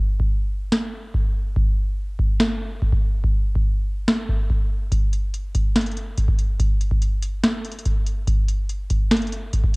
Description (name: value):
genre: hip hop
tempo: 143 BPM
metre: 4/4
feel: half-time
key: none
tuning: none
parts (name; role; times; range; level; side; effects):
- booming analog drum machine; drums; 0.2-9.8 s; hi-hat, kick drum, snare drum; -20 LUFS; equal; cassette tape
room: light reverb, digital ambience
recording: home recording on cassette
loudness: -20 LUFS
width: side -31 dB against mid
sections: 0.0-9.8 A section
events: break 0.0-4.9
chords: none